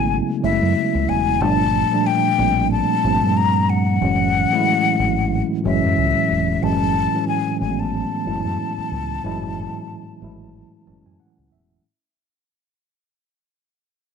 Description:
R&B, neo-soul; 92 BPM; 4/4; swing 57% on 16ths; A4 = 439 Hz
breathy concert flute; melody; 0.0-11.2 s; E5 to Bb5; -21 LUFS; left 8 dB; slapback echo
mellow tine electric piano; accompaniment; 0.0-11.9 s; G#2 to A5; -21 LUFS; right 2 dB; medium stereo tremolo
deep dub fingered electric bass; bass; 0.0-11.8 s; E1 to G2; -23 LUFS; right 2 dB; transformer saturation
moderate spring reverb, RT60 1.1 s, studio ambience; -17 LUFS; side -6 dB against mid
0.0-6.6 A section; 6.6-11.8 B section
fade-out 6.6-11.8; tine electric piano fill 10.5-11.8
0.0 F#m9; 1.4 Gm9; 4.0 F#m9
0.09 0.75 | 1.40 2.05 2.70 3.35 | 4.01 4.66 5.31 5.96 | 6.62 7.27 7.92 8.57 | 9.22 9.88 10.53 11.18

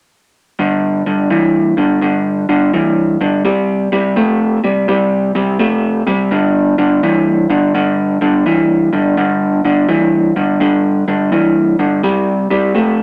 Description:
blues; 84 BPM; 4/4; swing 66% on 8ths; A4 = 440 Hz
electric guitar through a small old amp; solo; 0.6-13.0 s; G2 to A3; -14 LUFS; equal
wet studio reverb, RT60 0.5 s; -14 LUFS; mono
0.6-13.0 A section
0.6 G5; 3.5 C5; 6.3 G5; 12.0 C5
| 0.59 1.31 2.02 2.74 | 3.45 4.17 4.88 5.60 | 6.31 7.03 7.75 8.46 | 9.18 9.89 10.61 11.32 | 12.04 12.75

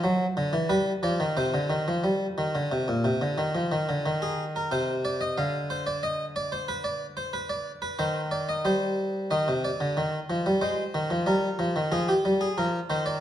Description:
classical, baroque-style two-part invention for harpsichord; 91 BPM; 4/4; straight; C minor; A4 = 435 Hz
harpsichord; solo; 0.0-13.2 s; Bb2 to F5; -25 LUFS; equal
wet recital hall reverb, RT60 1.5 s; dark, warm production; -25 LUFS; side -11 dB against mid
0.0-4.1 A section; 4.1-9.3 B section; 9.3-13.2 A section
0.0 D7/F#; 0.7 G7; 1.4 Cm; 4.1 Cm/Eb; 5.4 Dm7; 6.7 Bm/D; 8.0 Cm/Eb; 9.3 Cm; 10.6 Fm; 11.9 Bb/F
0.04 0.70 | 1.37 2.04 2.72 3.39 | 4.06 4.72 5.38 6.04 | 6.69 7.34 7.99 8.65 | 9.31 9.97 10.62 11.27 | 11.92 12.57

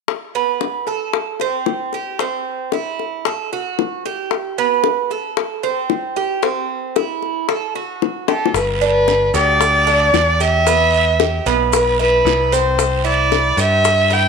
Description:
latin, Cuban son and guajira; 113 BPM; 4/4; straight; G major; A4 = 435 Hz
bongos; percussion; 0.1-14.3 s; -21 LUFS; left 15 dB
Cuban tres; arpeggios; 0.4-14.3 s; B3 to A4; -20 LUFS; right 8 dB
warm violin; melody; 8.3-14.3 s; A4 to G5; -15 LUFS; equal
modern bright picked electric bass; bass; 8.5-14.3 s; G1 to G2; -20 LUFS; left 1 dB
guiro; percussion; 8.5-14.3 s; -28 LUFS; right 14 dB
maracas; percussion; 8.6-14.3 s; -29 LUFS; right 16 dB
moderate echo chamber reverb, RT60 1.8 s; 1960s-style stereo with parts hard left and right; -15 LUFS; side -5 dB against mid
0.1-8.5 A section; 8.5-14.3 B section
drum fill 8.3
0.1 Asus2/B; 1.1 Am7/C; 2.2 C; 3.3 F#m; 4.3 G; 5.4 Am7/C; 6.4 C; 7.5 F#m; 8.5 G; 10.7 Em; 12.8 C
| 0.08 0.61 1.14 1.67 | 2.20 2.73 3.25 3.78 | 4.31 4.84 5.37 5.90 | 6.43 6.96 7.49 8.02 | 8.55 9.08 9.61 10.14 | 10.67 11.20 11.72 12.26 | 12.79 13.32 13.85

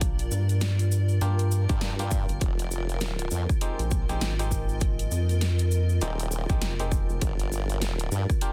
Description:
glitch hop; 100 BPM; 4/4; swing 60% on 16ths; F dorian; A4 = 441 Hz
bright clav; stabs; 0.0-8.5 s; Ab3 to G4; -39 LUFS; equal; vintage 12-bit sampler grit, sidechain pumping, digital delay
rubbery square bass; bass; 0.0-7.2 s; F1 to G2; -27 LUFS; equal
dubstep drum kit; drums; 0.0-8.5 s; hi-hat, rim click, snare drum; -36 LUFS; equal
electronic kick drum; drums; 0.0-8.4 s; -29 LUFS; equal
cabasa; percussion; 0.0-8.5 s; -42 LUFS; equal
granular cloud pad; texture; 0.0-8.5 s; F4 to Eb5; -39 LUFS; equal; built-in reverb, sidechain pumping
formant-sweep wobble bass; bass; 1.7-8.3 s; Eb1 to G2; -31 LUFS; equal; chorus
digital ambience; dense, heavily limited modern master; -26 LUFS; mono
0.0-8.5 A section
0.0 Gm7; 2.4 Fm9; 7.2 Gm7
| 0.01 0.61 1.21 1.81 | 2.41 3.01 3.61 4.21 | 4.81 5.41 6.01 6.61 | 7.21 7.81 8.41

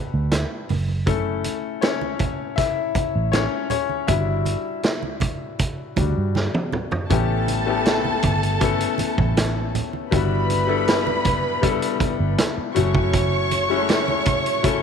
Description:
lush 1970s-style soul; 80 BPM; 4/4; straight; E dorian; A4 = 440 Hz
clear grand piano; accompaniment; 0.0-14.8 s; F#3 to E5; -24 LUFS; left 10 dB
vintage muted fingered electric bass; bass; 0.1-14.8 s; F#1 to G2; -23 LUFS; right 2 dB
vintage drum kit; drums; 0.3-14.8 s; hi-hat, kick drum, snare drum, toms; -24 LUFS; right 2 dB
congas; percussion; 0.3-14.4 s; -32 LUFS; right 13 dB
warm symphonic string section; second line; 7.1-14.8 s; A4 to C#6; -24 LUFS; right 2 dB
light reverb; 1960s-style stereo with parts hard left and right; -19 LUFS; side -7 dB against mid
0.0-7.1 A section; 7.1-14.8 B section
grand piano solo 0.0-7.1; drum fill 6.3-7.1
0.0 Gmaj9; 0.7 F#m7; 4.1 Em7/G; 7.1 A7; 10.1 Em7; 12.8 F#m7
0.31 | 1.07 1.82 2.58 3.33 | 4.09 4.84 5.59 6.35 | 7.11 7.86 8.61 9.37 | 10.12 10.88 11.63 12.38 | 13.14 13.89 14.64

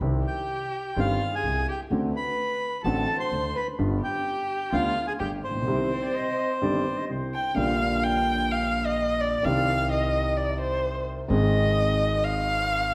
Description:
tango; 128 BPM; 4/4; rubato; C minor; A4 = 440 Hz
dark concert grand piano; accompaniment; 0.0-12.9 s; G1 to Ab4; -30 LUFS; equal
upright bass; bass; 0.0-12.9 s; G1 to D2; -34 LUFS; equal
warm violin; second line; 0.2-12.9 s; C4 to G5; -30 LUFS; equal
bandoneon; melody; 0.3-7.1 s; C5 to C6; -32 LUFS; equal
clear clarinet; second line; 5.9-7.5 s; C5 to Eb5; -37 LUFS; equal
wet recital hall reverb, RT60 1.6 s; -26 LUFS; mono
0.0-7.6 A section; 7.6-12.9 B section
violin solo 7.6-12.9
0.0 Cm; 1.9 D7; 3.8 G7; 5.7 Cm; 7.6 Bb6; 9.4 Cm; 11.3 Ab
| 0.01 0.49 0.97 1.44 | 1.91 2.38 2.85 3.32 | 3.79 4.26 4.73 5.20 | 5.67 6.14 6.62 7.09 | 7.57 8.04 8.51 8.98 | 9.44 9.91 10.37 10.84 | 11.30 11.76 12.23 12.70

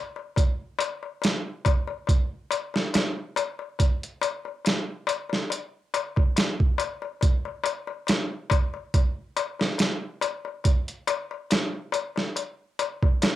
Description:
trip hop; 70 BPM; 4/4; swing 54% on 16ths
darbuka; percussion; 0.2-13.4 s; -30 LUFS; left 9 dB
boom bap sampler-style drum kit; drums; 0.4-13.4 s; hi-hat, kick drum, snare drum; -23 LUFS; right 1 dB; cassette tape
light reverb; home recording on cassette; -24 LUFS; side -14 dB against mid
0.0-13.4 A section
| 0.36 1.22 2.08 2.94 | 3.79 4.65 5.51 6.37 | 7.22 8.08 8.94 9.79 | 10.65 11.51 12.37 13.22

